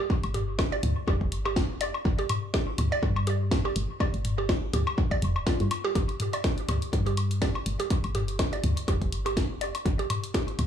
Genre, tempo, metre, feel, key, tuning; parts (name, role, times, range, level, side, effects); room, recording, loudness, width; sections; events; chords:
minimal techno; 123 BPM; 4/4; swing 55% on 16ths; A4 = 440 Hz
electronic kick drum; drums; 0.1-10.5 s; -27 LUFS; equal
woody FM bass; bass; 0.2-10.7 s; D1 to G2; -30 LUFS; equal; sidechain pumping
house drum kit; drums; 0.2-10.7 s; hi-hat, snare drum; -33 LUFS; equal; dub echo
electronic woodblock and toms; percussion; 0.2-10.7 s; -34 LUFS; left 3 dB; overdrive, dub echo
mallet-like synth pluck; riff; 0.3-10.4 s; F4 to D5; -33 LUFS; right 2 dB; chorus, sidechain pumping, dub echo
light reverb, digital ambience; echo-heavy mix, small room ambience; -25 LUFS; side -9 dB against mid
0.0-10.7 A section